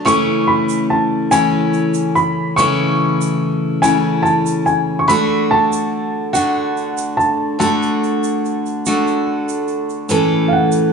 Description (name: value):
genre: acoustic folk duo or small band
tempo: 48 BPM (dotted quarters)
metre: 6/8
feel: straight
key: A major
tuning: A4 = 439 Hz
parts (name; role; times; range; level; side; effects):
- dark upright piano; melody; 0.0-10.9 s; F5 to C#6; -17 LUFS; equal; none
- picked steel-string acoustic guitar; accompaniment; 0.0-10.9 s; A2 to A4; -16 LUFS; equal; none
- egg shaker; percussion; 0.1-10.9 s; none; -28 LUFS; right 7 dB; none
room: moderate large studio reverb, RT60 1.2 s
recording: band playing live in one room, nothing above 10.4 kHz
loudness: -14 LUFS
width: side -5 dB against mid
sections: 0.0-10.1 A section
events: none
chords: 0.1 A/C#; 5.1 D; 10.1 A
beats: | 0.07 1.32 | 2.57 3.83 | 5.08 6.33 | 7.59 8.84 | 10.09